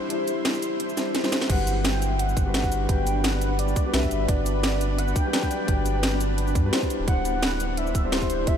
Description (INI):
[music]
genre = liquid drum and bass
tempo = 172 BPM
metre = 4/4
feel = swing 54% on 16ths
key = G major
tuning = A4 = 441 Hz
[part]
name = dark grand piano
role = accompaniment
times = 0.0-8.6 s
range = F#3 to C5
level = -30 LUFS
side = left 3 dB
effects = tape echo
[part]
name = shimmering ambient pad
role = sustained chords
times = 0.0-8.6 s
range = G3 to C5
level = -31 LUFS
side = equal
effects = chorus, built-in reverb
[part]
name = drum and bass drum kit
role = drums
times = 0.1-8.5 s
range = crash cymbal, hi-hat, shaker, snare drum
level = -28 LUFS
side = right 1 dB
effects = overdrive, small room ambience
[part]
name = warm velvety synth lead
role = melody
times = 1.5-8.6 s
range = C5 to G5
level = -31 LUFS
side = equal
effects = chorus, ping-pong delay
[part]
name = warm sub bass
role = bass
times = 1.5-8.6 s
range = D1 to G2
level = -26 LUFS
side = equal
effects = tube saturation
[part]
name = electronic kick drum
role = drums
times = 1.5-8.5 s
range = none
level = -25 LUFS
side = equal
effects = overdrive, small room ambience
[sound]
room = moderate huge ambient reverb, RT60 8.7 s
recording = dreamy mix soaked in reverb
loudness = -22 LUFS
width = side -8 dB against mid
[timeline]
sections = 0.0-8.6 A section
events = break 0.1-1.5; drum fill 1.0-1.5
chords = 0.0 D9sus4; 1.5 Gmaj7; 6.9 D9sus4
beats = | 0.10 0.45 0.80 1.15 | 1.50 1.84 2.19 2.54 | 2.89 3.24 3.59 3.94 | 4.29 4.63 4.98 5.33 | 5.68 6.03 6.38 6.73 | 7.08 7.42 7.77 8.12 | 8.47